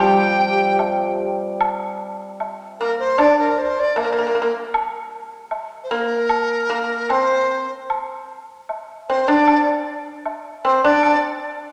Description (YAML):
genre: chinese traditional, Chinese chamber ensemble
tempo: 76 BPM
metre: 2/4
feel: rubato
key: G yu mode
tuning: A4 = 442 Hz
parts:
  - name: mellow dizi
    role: melody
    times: 0.0-11.2 s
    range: Bb4 to G5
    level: -23 LUFS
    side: equal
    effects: none
  - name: bright low xiao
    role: second line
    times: 0.0-1.2 s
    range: G4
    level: -27 LUFS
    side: equal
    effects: none
  - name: pipa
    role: second line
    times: 0.0-11.2 s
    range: Bb3 to G4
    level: -23 LUFS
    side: equal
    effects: none
  - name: hammered dulcimer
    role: accompaniment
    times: 0.0-2.4 s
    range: F3 to G3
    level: -26 LUFS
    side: equal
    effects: none
  - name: woodblock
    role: percussion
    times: 0.8-11.2 s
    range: none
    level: -27 LUFS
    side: equal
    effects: none
room: wet scoring stage reverb, RT60 2.0 s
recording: none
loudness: -19 LUFS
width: mono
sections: 0.0-1.6 A section; 1.6-11.7 B section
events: none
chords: none